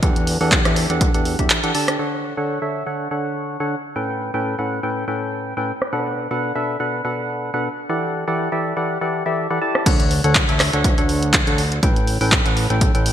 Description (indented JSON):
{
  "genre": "piano house",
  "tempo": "122 BPM",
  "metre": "4/4",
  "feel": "swing 55% on 16ths",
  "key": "D major",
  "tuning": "A4 = 438 Hz",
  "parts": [
    { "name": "percussive organ stab", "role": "riff", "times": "0.0-13.1 s", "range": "A2 to A5", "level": "-21 LUFS", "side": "equal", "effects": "chorus, sidechain pumping, ping-pong delay" },
    { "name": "fat analog bass", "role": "bass", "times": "0.0-1.5, 9.9-13.1 s", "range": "A1 to E2", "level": "-22 LUFS", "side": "equal", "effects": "sidechain pumping" },
    { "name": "electronic kick drum", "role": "drums", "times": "0.0-1.5, 9.9-12.9 s", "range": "none", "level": "-19 LUFS", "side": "equal", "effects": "none" },
    { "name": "punchy analog drum machine", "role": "drums", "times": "0.0-2.0, 5.8-5.9, 9.8-13.1 s", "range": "crash cymbal, handclaps, hi-hat, rim click", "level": "-20 LUFS", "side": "equal", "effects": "low-pass filter on hats, low-pass filter on snare, low-pass filter on cymbals, low-pass filter on room, gated reverb" }
  ],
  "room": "light reverb, digital ambience",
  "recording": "bright 1980s-style digital production",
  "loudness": "-17 LUFS",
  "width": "side -10 dB against mid",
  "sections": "0.0-2.0 A section; 2.0-9.9 B section; 9.9-13.1 C section",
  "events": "drop 9.9-13.1",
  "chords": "0.0 Em11; 2.0 Dmaj7; 4.0 A9; 5.9 Bm7; 7.9 Em11; 9.9 Dmaj7; 11.8 A9",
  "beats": "| 0.03 0.52 1.01 1.50 | 1.99 2.48 2.98 3.47 | 3.96 4.45 4.94 5.44 | 5.93 6.42 6.91 7.40 | 7.89 8.39 8.88 9.37 | 9.86 10.35 10.85 11.34 | 11.83 12.32 12.81"
}